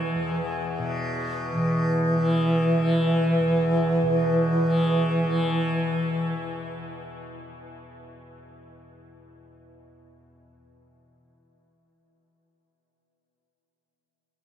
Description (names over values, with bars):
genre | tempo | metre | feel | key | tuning
world meditative, free-time meditation music | free time | none | none | unclear | A4 = 441 Hz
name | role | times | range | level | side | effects
reedy bass flute | melody | 0.0-6.3 s | E3 | -23 LUFS | equal | tape echo
tanpura | drone | 0.0-12.4 s | E2 to E3 | -31 LUFS | left 1 dB | none
room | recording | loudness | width
wet huge ambient reverb, RT60 7.0 s | none | -22 LUFS | side -10 dB against mid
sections
0.0-1.5 A section; 1.5-6.1 B section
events
none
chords
none